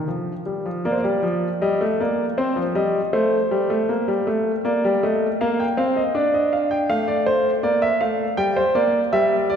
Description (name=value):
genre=classical, baroque-style two-part invention for grand piano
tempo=80 BPM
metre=4/4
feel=straight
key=Bb major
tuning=A4 = 441 Hz
part: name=clear grand piano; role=solo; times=0.0-9.6 s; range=F3 to G5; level=-18 LUFS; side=equal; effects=none
room=wet church reverb, RT60 2.8 s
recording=recorded in a church or concert hall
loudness=-18 LUFS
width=side -7 dB against mid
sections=0.8-9.6 A section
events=none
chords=0.0 Bb5; 0.8 Bb; 2.4 Adim; 3.9 Bb; 6.9 F/A; 8.4 Edim/G